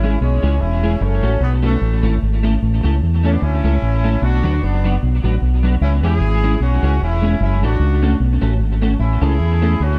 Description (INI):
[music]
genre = ska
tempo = 150 BPM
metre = 4/4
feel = swing 54% on 8ths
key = A major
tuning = A4 = 444 Hz
[part]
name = warm horn section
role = melody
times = 0.0-10.0 s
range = E3 to G#4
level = -26 LUFS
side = equal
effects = none
[part]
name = electric guitar at the edge of break-up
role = accompaniment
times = 0.0-9.7 s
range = F#3 to A4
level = -25 LUFS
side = equal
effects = analog chorus, tape echo
[part]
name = fingered electric bass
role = bass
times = 0.0-10.0 s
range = E1 to E2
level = -18 LUFS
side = equal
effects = none
[sound]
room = light reverb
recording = dark, warm production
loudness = -17 LUFS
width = mono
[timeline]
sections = 0.0-2.6 A section; 2.6-10.0 B section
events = none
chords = 0.0 C#m; 1.0 F#m; 1.8 A; 4.2 Bm; 5.8 C#m; 7.4 F#m; 9.0 A